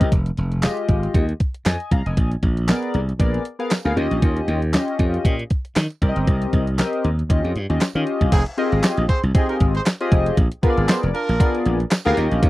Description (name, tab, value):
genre	early-eighties boogie funk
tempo	117 BPM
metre	4/4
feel	swing 56% on 16ths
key	F minor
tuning	A4 = 441 Hz
part	chorused polysynth	accompaniment	0.0-12.5 s	Ab3 to Bb5	-23 LUFS	left 2 dB	none
part	slap bass	bass	0.0-12.5 s	F1 to Eb3	-21 LUFS	equal	none
part	crisp 8-bit digital drum machine	drums	0.0-12.5 s	crash cymbal, handclaps, hi-hat, kick drum, snare drum	-18 LUFS	equal	overdrive
part	tambourine	percussion	0.6-12.0 s	none	-37 LUFS	right 12 dB	none
part	warm horn section	second line	8.3-12.3 s	C4 to C5	-25 LUFS	right 3 dB	none
room	little or no reverb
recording	dry, close 1970s-style studio recording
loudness	-18 LUFS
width	side -17 dB against mid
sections	0.0-8.3 A section; 8.3-12.5 B section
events	none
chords	0.1 Fm9; 2.2 Bb7b9; 4.0 Eb9; 6.0 Cm7; 7.3 Eb9; 8.3 Fm9; 10.4 Bb7b9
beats	| 0.12 0.63 1.15 1.66 | 2.17 2.68 3.20 3.71 | 4.22 4.74 5.25 5.76 | 6.27 6.79 7.30 7.81 | 8.32 8.84 9.35 9.86 | 10.38 10.89 11.40 11.91 | 12.43